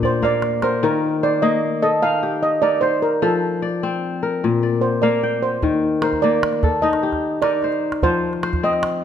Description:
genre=west african traditional, West African string and xylophone music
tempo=100 BPM (dotted quarters)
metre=12/8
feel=straight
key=unclear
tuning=A4 = 440 Hz
part: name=steel pan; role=melody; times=0.0-9.0 s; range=A4 to F5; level=-20 LUFS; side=right 3 dB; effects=none
part: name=kora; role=arpeggios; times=0.0-9.0 s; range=Bb2 to G5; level=-20 LUFS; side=left 4 dB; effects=none
part: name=calabash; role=percussion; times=0.0-0.8, 5.6-8.9 s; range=none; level=-26 LUFS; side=right 2 dB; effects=none
room=wet recital hall reverb, RT60 1.8 s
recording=dark, warm production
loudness=-17 LUFS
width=side -9 dB against mid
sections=0.8-9.0 A section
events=drum fill 0.0-0.8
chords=0.0 Bb; 0.8 Eb; 3.2 F; 4.4 Bb; 5.6 Eb; 8.0 F5

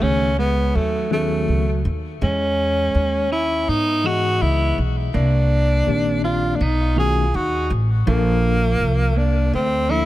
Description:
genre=hip hop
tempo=82 BPM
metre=4/4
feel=swing 57% on 16ths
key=unclear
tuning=A4 = 440 Hz
part: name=breathy tenor saxophone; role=melody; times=0.0-10.1 s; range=A3 to G#4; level=-21 LUFS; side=equal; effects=ping-pong delay
part: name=clean electric guitar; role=second line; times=0.0-10.1 s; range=E#3 to E#4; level=-26 LUFS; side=right 5 dB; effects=none
part: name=tine electric piano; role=accompaniment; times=0.0-10.1 s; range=D#3 to D#5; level=-25 LUFS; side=left 2 dB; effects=overdrive, fast stereo tremolo
part: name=upright bass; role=bass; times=0.0-10.1 s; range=A1 to G#2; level=-20 LUFS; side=equal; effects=none
room=small room ambience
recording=none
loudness=-17 LUFS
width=side -15 dB against mid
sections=0.0-10.1 A section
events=none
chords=0.0 B13; 2.2 Emaj7; 5.1 Cm9; 6.6 B9; 8.1 A#maj7

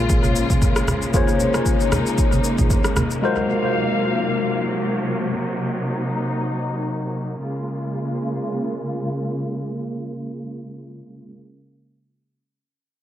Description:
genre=amapiano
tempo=115 BPM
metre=4/4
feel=swing 55% on 16ths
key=Bb minor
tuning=A4 = 438 Hz
part: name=tine electric piano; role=accompaniment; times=0.0-5.3 s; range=Ab3 to Db5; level=-22 LUFS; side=left 3 dB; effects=overdrive, phaser, low-pass filter, analog delay
part: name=warm studio string section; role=sustained chords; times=0.0-11.3 s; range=C3 to F5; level=-24 LUFS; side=equal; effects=sidechain pumping, low-pass filter
part: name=hollow-body short-scale fingered electric bass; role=bass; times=0.0-1.1 s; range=Bb1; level=-28 LUFS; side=equal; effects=none
part: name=deep house drum kit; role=drums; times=0.1-3.2 s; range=kick drum, rim click, shaker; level=-21 LUFS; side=equal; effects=analog delay
part: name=congas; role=percussion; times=0.2-3.1 s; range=none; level=-26 LUFS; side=right 1 dB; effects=analog delay
room=moderate spring reverb, RT60 1.6 s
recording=echo-heavy mix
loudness=-19 LUFS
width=side -11 dB against mid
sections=0.0-7.4 A section; 7.4-11.6 B section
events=filter sweep 0.0-7.4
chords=0.0 Bbm7; 3.2 Ab13; 7.4 Bbm7

